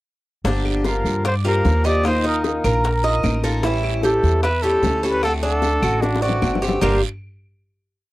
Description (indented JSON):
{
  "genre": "latin, Cuban son and guajira",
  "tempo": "151 BPM",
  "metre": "4/4",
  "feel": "straight",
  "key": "G minor",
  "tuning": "A4 = 440 Hz",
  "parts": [
    { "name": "Cuban tres", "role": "arpeggios", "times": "0.4-7.0 s", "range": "G3 to E5", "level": "-23 LUFS", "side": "right 2 dB", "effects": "none" },
    { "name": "upright bass", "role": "bass", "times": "0.4-7.0 s", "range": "G1 to G2", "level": "-21 LUFS", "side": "equal", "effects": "none" },
    { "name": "bongos", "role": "percussion", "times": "0.4-6.9 s", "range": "none", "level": "-27 LUFS", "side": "left 5 dB", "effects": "none" },
    { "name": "picked swing-style acoustic guitar", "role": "accompaniment", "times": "0.5-7.0 s", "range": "G2 to Bb4", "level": "-25 LUFS", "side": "left 2 dB", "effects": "none" },
    { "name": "guiro", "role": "percussion", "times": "0.5-6.9 s", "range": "none", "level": "-35 LUFS", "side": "right 15 dB", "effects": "none" },
    { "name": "claves", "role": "percussion", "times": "0.7-6.9 s", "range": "none", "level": "-36 LUFS", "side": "left 1 dB", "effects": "none" },
    { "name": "breathy trumpet", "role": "melody", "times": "0.9-7.0 s", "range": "D4 to D5", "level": "-23 LUFS", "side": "equal", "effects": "none" }
  ],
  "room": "light reverb",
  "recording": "dry, close 1970s-style studio recording",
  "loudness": "-17 LUFS",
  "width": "side -18 dB against mid",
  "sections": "0.4-6.8 verse; 6.8-8.1 final chord",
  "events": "drum fill 6.0-6.8",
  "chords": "0.4 Gm7; 2.0 Ebsus2; 3.6 A7; 5.2 D7; 6.8 Gm7"
}